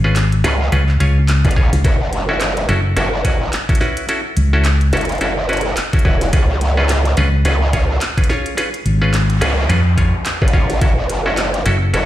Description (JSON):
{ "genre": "glitch hop", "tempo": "107 BPM", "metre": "4/4", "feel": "swing 58% on 16ths", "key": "unclear", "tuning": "A4 = 441 Hz", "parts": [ { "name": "bright clav", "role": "stabs", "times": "0.0-12.1 s", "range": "C#4 to C#5", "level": "-21 LUFS", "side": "equal", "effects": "sidechain pumping, ping-pong delay" }, { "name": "fingered electric bass", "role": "bass", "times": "0.0-11.9 s", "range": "F#1 to E#2", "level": "-14 LUFS", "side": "equal", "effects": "none" }, { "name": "glitchy drum kit", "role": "drums", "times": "0.2-12.1 s", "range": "handclaps, hi-hat, snare drum", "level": "-24 LUFS", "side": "equal", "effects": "studio reverb" }, { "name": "growl bass", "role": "bass", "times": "0.4-12.1 s", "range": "E1 to C#2", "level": "-17 LUFS", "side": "equal", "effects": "chorus" }, { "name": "electronic kick drum", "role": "drums", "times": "1.4-10.9 s", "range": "none", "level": "-15 LUFS", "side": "equal", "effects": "studio reverb" }, { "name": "noise sweep", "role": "sound effects", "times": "8.7-10.8 s", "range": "none", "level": "-27 LUFS", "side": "equal", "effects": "none" } ], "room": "digital ambience", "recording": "played on a big sound system in a bare room, large studio reverb", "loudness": "-13 LUFS", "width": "side -14 dB against mid", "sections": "0.0-12.1 A section", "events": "noise sweep 8.7-10.8", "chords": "0.0 C#7; 1.8 F#m7; 6.3 C#7; 10.8 F#m7", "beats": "0.16 0.72 1.28 | 1.84 2.41 2.97 3.53 | 4.09 4.65 5.21 5.77 | 6.33 6.89 7.45 8.01 | 8.57 9.13 9.70 10.26 | 10.82 11.38 11.94" }